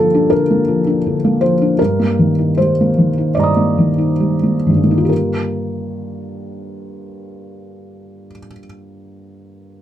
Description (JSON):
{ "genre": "neoclassical minimalist piano", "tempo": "65-83 BPM", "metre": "4/4", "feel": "rubato", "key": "G minor", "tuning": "A4 = 441 Hz", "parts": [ { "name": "felt-muted upright piano", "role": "solo", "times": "0.0-9.8 s", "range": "G2 to Eb6", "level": "-14 LUFS", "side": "equal", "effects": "none" } ], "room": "light reverb", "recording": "none", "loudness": "-13 LUFS", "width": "side -11 dB against mid", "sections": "0.0-5.1 A section; 5.1-8.6 B section", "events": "slowing down 0.0-5.1", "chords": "0.0 Gm7; 1.8 Ebmaj7/G; 5.1 Gm7" }